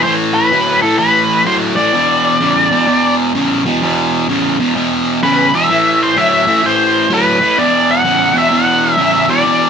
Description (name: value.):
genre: rock.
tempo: 128 BPM.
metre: 4/4.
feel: swing 65% on 8ths.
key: unclear.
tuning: A4 = 441 Hz.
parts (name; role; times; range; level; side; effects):
octave-fuzz lead guitar; melody; 0.0-9.7 s; A4 to F#5; -12 LUFS; left 1 dB; distortion.
sludgy distorted guitar; riff; 0.0-9.7 s; E2 to F#3; -13 LUFS; right 1 dB; overdrive.
room: moderate studio reverb, RT60 0.7 s.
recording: band playing live in one room.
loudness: -10 LUFS.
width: side -7 dB against mid.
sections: 0.0-9.7 A section.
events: none.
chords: 0.1 A5; 1.9 E5; 5.7 Am; 7.6 E5.